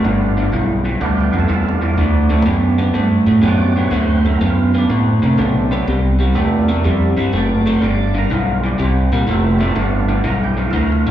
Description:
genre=blues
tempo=124 BPM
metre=4/4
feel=swing 67% on 8ths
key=unclear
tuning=A4 = 440 Hz
part: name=percussive tonewheel organ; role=accompaniment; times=0.0-11.1 s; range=F#3 to D5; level=-24 LUFS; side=right 7 dB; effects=slow rotary speaker, overdrive, slapback echo
part: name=electric guitar through a small old amp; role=riff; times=0.0-11.1 s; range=G2 to B3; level=-16 LUFS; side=left 1 dB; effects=analog chorus
part: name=fingered electric bass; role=bass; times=0.0-11.1 s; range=F1 to C3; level=-17 LUFS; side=right 1 dB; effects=none
room=little or no reverb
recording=live gig heard through the venue's PA, recital hall reverb, small room ambience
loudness=-13 LUFS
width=side -11 dB against mid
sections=0.0-11.1 A section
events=none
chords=0.0 G7; 2.0 D7; 5.9 C7; 7.8 G; 8.8 C7; 9.8 G7

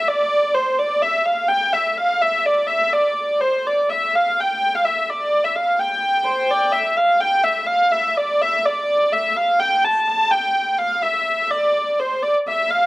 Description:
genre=medieval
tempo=84 BPM (dotted quarters)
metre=6/8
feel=straight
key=unclear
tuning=A4 = 441 Hz
part: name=dark hurdy-gurdy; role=solo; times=0.0-12.9 s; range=C5 to A5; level=-16 LUFS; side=equal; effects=slapback echo
room=little or no reverb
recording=recorded outdoors, with no room sound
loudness=-16 LUFS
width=side -18 dB against mid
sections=0.0-7.2 A section; 7.2-12.9 A section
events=none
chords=none

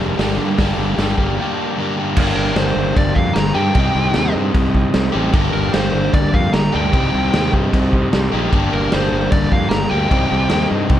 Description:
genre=garage rock duo or trio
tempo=151 BPM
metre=4/4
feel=straight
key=G minor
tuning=A4 = 440 Hz
part: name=overdriven combo organ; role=sustained chords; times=0.0-11.0 s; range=G4 to Bb5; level=-30 LUFS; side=right 1 dB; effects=none
part: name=crunchy overdriven guitar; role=riff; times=0.0-11.0 s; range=G2 to G4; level=-19 LUFS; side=left 1 dB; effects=none
part: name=fuzz fingered electric bass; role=bass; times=0.0-11.0 s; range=F1 to G2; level=-20 LUFS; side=equal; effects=overdrive
part: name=raw garage drum kit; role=drums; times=0.2-11.0 s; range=crash cymbal, hi-hat, kick drum, snare drum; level=-19 LUFS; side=equal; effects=none
part: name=fuzz lead guitar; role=melody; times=2.4-10.7 s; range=Bb4 to Bb5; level=-22 LUFS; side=equal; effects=distortion
room=little or no reverb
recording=none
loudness=-14 LUFS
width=side -11 dB against mid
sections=0.0-2.2 A section; 2.2-11.0 B section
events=transistor combo organ fill 1.0-2.2; break 1.4-2.2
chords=0.0 Gm; 3.8 Cm; 5.3 Gm; 6.9 Cm; 8.5 Gm; 10.1 Cm

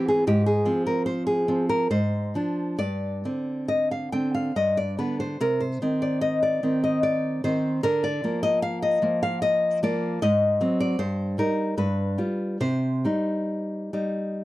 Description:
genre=romantic piece for solo classical guitar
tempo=66-78 BPM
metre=3/4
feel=rubato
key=C minor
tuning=A4 = 440 Hz
part: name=nylon-string guitar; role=solo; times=0.0-14.4 s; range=G2 to G5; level=-22 LUFS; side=equal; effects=none
room=moderate booth ambience, RT60 0.3 s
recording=dark, warm production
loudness=-22 LUFS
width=side -16 dB against mid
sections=0.0-14.4 A section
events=none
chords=0.3 Fm/Ab; 1.9 Dm7b5/Ab; 2.8 Gsus4; 4.5 G; 5.4 Cm; 7.8 Bb/D; 10.2 Ab7; 11.0 Cm/G; 11.8 G7; 12.6 Cm

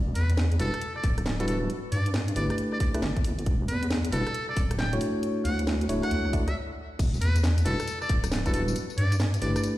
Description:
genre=UK garage, two-step garage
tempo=136 BPM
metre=4/4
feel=swing 64% on 16ths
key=E dorian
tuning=A4 = 442 Hz
part: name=deep soft wobble bass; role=bass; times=0.0-9.5 s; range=D1 to G2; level=-26 LUFS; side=equal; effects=chorus
part: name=trumpet with metal mute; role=melody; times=0.2-9.6 s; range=A4 to G5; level=-34 LUFS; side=equal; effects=ping-pong delay
part: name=garage drum kit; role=drums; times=0.2-9.8 s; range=crash cymbal, hi-hat, rim click, snare drum, tambourine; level=-34 LUFS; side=right 1 dB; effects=none
part: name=tine electric piano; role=stabs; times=0.6-9.8 s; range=G3 to D5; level=-31 LUFS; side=equal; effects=vintage 12-bit sampler grit, ping-pong delay
part: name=electronic kick drum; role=drums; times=1.0-8.5 s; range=none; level=-26 LUFS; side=equal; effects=none
room=light reverb, digital ambience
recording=played on a big sound system in a bare room, large studio reverb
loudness=-24 LUFS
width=side -15 dB against mid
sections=0.0-7.0 A section; 7.0-9.8 B section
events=stop 6.6-7.0; drop 7.0-9.8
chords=0.0 Em9; 1.7 G69; 3.5 E7(no3); 5.0 Dmaj9; 7.0 Em9; 8.8 G69

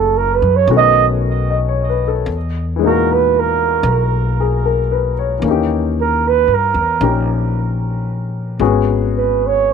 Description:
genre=jazz ballad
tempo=76 BPM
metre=4/4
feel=swing 67% on 8ths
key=Eb minor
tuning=A4 = 439 Hz
part: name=dark flugelhorn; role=melody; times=0.0-9.7 s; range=A4 to D#5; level=-16 LUFS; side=right 10 dB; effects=tape echo
part: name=warm upright piano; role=accompaniment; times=0.0-9.7 s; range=A#2 to D#5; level=-19 LUFS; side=left 13 dB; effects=none
part: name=upright bass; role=bass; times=0.0-9.7 s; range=Gb1 to G2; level=-18 LUFS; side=left 1 dB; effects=none
room=light reverb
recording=1960s-style stereo with parts hard left and right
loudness=-13 LUFS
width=side -6 dB against mid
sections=0.0-9.7 A section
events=flugelhorn solo 0.0-9.7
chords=0.0 Gbm7; 0.7 B9; 2.3 Emaj9#11; 5.4 Eb7b9; 8.6 Abm7

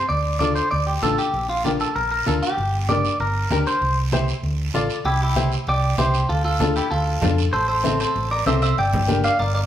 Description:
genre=latin, cumbia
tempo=194 BPM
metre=4/4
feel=straight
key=D minor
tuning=A4 = 440 Hz
part: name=clean electric guitar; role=melody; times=0.0-9.6 s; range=E4 to G5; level=-22 LUFS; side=right 1 dB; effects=spring reverb
part: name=hollow-body short-scale fingered electric bass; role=bass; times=0.1-9.6 s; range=G1 to F2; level=-23 LUFS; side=equal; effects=none
part: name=congas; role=percussion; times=0.1-9.6 s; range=none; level=-28 LUFS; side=right 3 dB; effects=none
part: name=guiro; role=percussion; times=0.1-9.7 s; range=none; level=-33 LUFS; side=right 6 dB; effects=none
part: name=clear upright piano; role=accompaniment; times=0.4-9.3 s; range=Bb3 to D5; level=-25 LUFS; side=left 5 dB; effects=none
room=moderate studio reverb, RT60 0.8 s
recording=band playing live in one room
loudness=-18 LUFS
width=side -11 dB against mid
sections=0.0-5.1 A section; 5.1-9.7 B section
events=none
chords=0.1 Dm; 1.3 Bb; 2.6 Gm; 3.8 C; 4.4 Dm; 5.1 C; 6.3 Dm; 7.5 Am; 8.8 Gm

